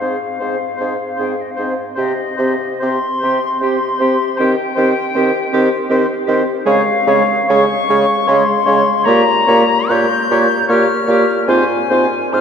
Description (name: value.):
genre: classical, slow romantic movement for wind quintet.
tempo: 67-80 BPM.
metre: 3/4.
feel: rubato.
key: F minor.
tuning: A4 = 440 Hz.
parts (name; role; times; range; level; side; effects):
silver concert flute; melody; 0.0-12.4 s; Eb5 to G6; -18 LUFS; left 4 dB; none.
warm oboe; second line; 0.0-12.4 s; C5 to Db5; -21 LUFS; left 2 dB; none.
bright clarinet; accompaniment; 0.0-12.4 s; F4 to Ab4; -21 LUFS; right 4 dB; none.
mellow French horn; accompaniment; 0.0-12.4 s; Ab3 to C4; -20 LUFS; equal; none.
warm bassoon; bass; 0.0-12.4 s; Ab2 to Eb3; -18 LUFS; right 2 dB; none.
room: wet cathedral reverb, RT60 6.1 s.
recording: recorded in a church or concert hall.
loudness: -12 LUFS.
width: side -7 dB against mid.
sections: 0.0-12.4 A section.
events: none.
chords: 0.0 Fm/Ab; 2.0 Cm; 4.4 Cm/Eb; 6.7 Db; 9.1 Gdim/Bb; 11.5 Fm/Ab.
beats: 0.41 1.20 | 1.98 2.83 3.62 | 4.39 5.15 5.90 | 6.67 7.50 8.29 | 9.07 9.91 10.70 | 11.49 12.35.